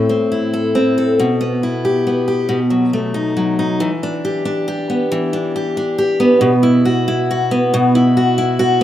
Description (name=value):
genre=pop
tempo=46 BPM (dotted quarters)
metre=6/8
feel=straight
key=E minor from 3.8 s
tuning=A4 = 440 Hz
part: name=picked steel-string acoustic guitar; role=solo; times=0.0-8.8 s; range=A2 to A4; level=-14 LUFS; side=equal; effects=analog delay
room=light reverb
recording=rough home demo mix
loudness=-14 LUFS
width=side -12 dB against mid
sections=0.0-3.8 A section; 3.8-8.8 B section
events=none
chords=0.0 Am; 1.2 Em/B; 2.5 B7; 3.8 Em7; 6.4 Bsus4